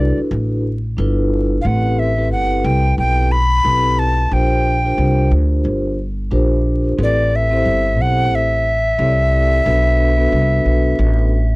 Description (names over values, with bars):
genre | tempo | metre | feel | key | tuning
hip hop | 90 BPM | 4/4 | swing 59% on 16ths | A dorian | A4 = 440 Hz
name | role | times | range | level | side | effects
alto recorder | melody | 0.0-11.6 s | D5 to B5 | -18 LUFS | equal | none
vibraphone with soft mallets | accompaniment | 0.0-11.3 s | B3 to D5 | -20 LUFS | equal | none
upright bass | bass | 0.0-11.6 s | G1 to D2 | -16 LUFS | equal | tube saturation
room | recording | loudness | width
little or no reverb | dry, gritty hardware recording, vinyl crackle | -14 LUFS | side -22 dB against mid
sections
0.0-11.6 A section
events
none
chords
0.0 D7; 1.0 G13; 1.7 Am7; 4.3 Bb6; 7.0 Am9; 9.7 Bm7